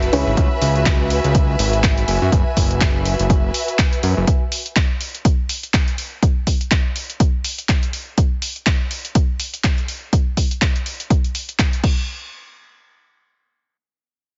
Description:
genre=piano house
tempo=123 BPM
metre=4/4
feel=swing 57% on 16ths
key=unclear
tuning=A4 = 440 Hz
part: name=fat analog bass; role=bass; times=0.0-4.3 s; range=F#1 to F#2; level=-22 LUFS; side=equal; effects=sidechain pumping
part: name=punchy analog drum machine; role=drums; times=0.0-11.9 s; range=crash cymbal, handclaps, hi-hat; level=-26 LUFS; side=equal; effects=none
part: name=rich studio string section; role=texture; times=0.0-4.3 s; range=F#4 to A5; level=-25 LUFS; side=equal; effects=sidechain pumping
part: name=electronic kick drum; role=drums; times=0.4-11.9 s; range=none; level=-19 LUFS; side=equal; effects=none
room=light reverb, digital ambience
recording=heavily compressed radio sound, nothing above 7.6 kHz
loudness=-19 LUFS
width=mono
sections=0.0-12.1 A section; 12.1-14.4 B section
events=none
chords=0.1 C#m7; 2.1 F#9sus4; 4.3 N.C.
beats=| 0.37 0.86 1.35 1.83 | 2.32 2.81 3.30 3.79 | 4.27 4.76 5.25 5.74 | 6.22 6.71 7.20 7.69 | 8.18 8.66 9.15 9.64 | 10.13 10.62 11.10 11.59

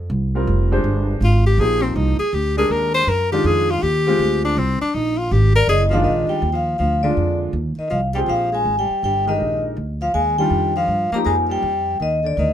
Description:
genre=jazz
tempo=161 BPM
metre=3/4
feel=swing 65% on 8ths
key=F dorian from 6.0 s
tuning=A4 = 440 Hz
part: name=upright bass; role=bass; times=0.0-12.5 s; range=F1 to G2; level=-20 LUFS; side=right 1 dB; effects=none
part: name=warm upright piano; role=accompaniment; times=0.3-11.6 s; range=D3 to C5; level=-23 LUFS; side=equal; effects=none
part: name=clear tenor saxophone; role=second line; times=1.2-12.5 s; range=D3 to C5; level=-21 LUFS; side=left 2 dB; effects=none
part: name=vibraphone with medium mallets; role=melody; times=5.6-12.5 s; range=D5 to Bb5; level=-20 LUFS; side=left 1 dB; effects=plate reverb
room=light reverb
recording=none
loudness=-16 LUFS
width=side -10 dB against mid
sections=0.0-6.0 A section; 6.0-12.5 B section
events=tenor saxophone solo 0.0-6.0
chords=0.0 C9sus4; 1.6 Bb9sus4; 6.0 F13sus4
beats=0.10 | 0.47 0.84 1.22 | 1.59 1.96 2.33 | 2.70 3.07 3.44 | 3.82 4.19 4.56 | 4.93 5.30 5.67 | 6.04 6.42 6.79 | 7.16 7.53 7.90 | 8.28 8.65 9.02 | 9.39 9.77 10.14 | 10.51 10.88 11.26 | 11.63 12.00 12.37

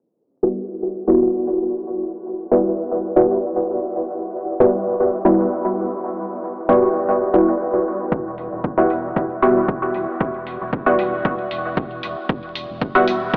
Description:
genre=dub techno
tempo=115 BPM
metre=4/4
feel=straight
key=E minor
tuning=A4 = 440 Hz
part: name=filtered dub chord stab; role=stabs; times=0.4-13.1 s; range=G3 to F#4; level=-20 LUFS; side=equal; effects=chorus, phaser, vintage 12-bit sampler grit, sidechain pumping, dub echo
part: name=soft dub sub bass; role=bass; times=8.1-13.4 s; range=D1 to E1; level=-41 LUFS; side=equal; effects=sidechain pumping
part: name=electronic kick drum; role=drums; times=8.1-13.4 s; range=none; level=-25 LUFS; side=equal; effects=none
part: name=electronic hi-hat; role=drums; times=8.4-13.2 s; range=none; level=-36 LUFS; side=equal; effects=none
room=wet huge ambient reverb, RT60 8.2 s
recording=dreamy mix soaked in reverb, vinyl crackle, low-pass filter, AM radio sound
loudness=-20 LUFS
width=mono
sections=0.0-13.4 A section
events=filter sweep on synth stab 0.0-13.4; filter sweep 0.0-13.4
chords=0.0 Emadd9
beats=0.29 0.81 1.34 | 1.86 2.38 2.90 3.42 | 3.94 4.47 4.99 5.51 | 6.03 6.55 7.08 7.60 | 8.12 8.64 9.16 9.68 | 10.21 10.73 11.25 11.77 | 12.29 12.81 13.34

